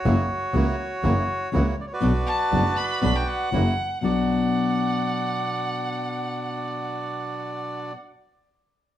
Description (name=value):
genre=tango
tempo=121 BPM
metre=4/4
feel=rubato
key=B minor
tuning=A4 = 441 Hz
part: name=bandoneon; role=melody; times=0.0-7.9 s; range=F#4 to F#5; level=-29 LUFS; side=right 2 dB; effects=plate reverb
part: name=nylon-string guitar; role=accompaniment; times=0.0-8.0 s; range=B2 to F#4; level=-26 LUFS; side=left 4 dB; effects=none
part: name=bright double bass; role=bass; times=0.0-4.2 s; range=F#1 to C#2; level=-24 LUFS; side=right 1 dB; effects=none
part: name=bandoneon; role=stabs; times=0.1-7.9 s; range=A#3 to F#4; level=-35 LUFS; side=right 2 dB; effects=none
part: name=rich violin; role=second line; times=2.3-7.9 s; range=F#5 to B5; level=-29 LUFS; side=equal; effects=none
room=wet studio reverb, RT60 0.8 s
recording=heard from further back in the room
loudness=-22 LUFS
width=side -12 dB against mid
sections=0.0-4.0 A section; 4.0-8.0 B section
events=none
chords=0.1 F#7; 2.0 Bm; 3.5 F#7; 4.0 Bm